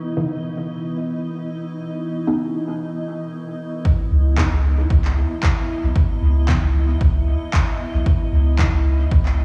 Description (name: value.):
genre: dub techno.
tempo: 114 BPM.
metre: 4/4.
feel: swing 54% on 16ths.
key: C# minor.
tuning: A4 = 440 Hz.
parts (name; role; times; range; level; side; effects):
granular cloud pad; sustained chords; 0.0-9.4 s; B3 to D#5; -32 LUFS; equal; built-in reverb, sidechain pumping.
metallic inharmonic drone; texture; 0.0-9.4 s; E3 to E4; -33 LUFS; equal; chorus, built-in reverb, sidechain pumping.
filtered dub chord stab; stabs; 0.2-8.7 s; C#3 to D#4; -29 LUFS; equal; phaser, sidechain pumping, dub echo.
electronic kick drum; drums; 3.9-9.2 s; none; -20 LUFS; equal; studio reverb.
soft dub sub bass; bass; 4.1-9.4 s; G#1 to C#2; -20 LUFS; equal; sidechain pumping.
electronic handclaps; drums; 4.4-9.4 s; none; -31 LUFS; equal; overdrive, studio reverb, dub echo.
room: light reverb.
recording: played on a big sound system in a bare room, large studio reverb, low-pass filter, small room ambience.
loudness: -20 LUFS.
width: mono.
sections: 0.0-3.9 A section; 3.9-9.4 B section.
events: none.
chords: 0.0 C#m9 (rootless); 3.9 C#m9.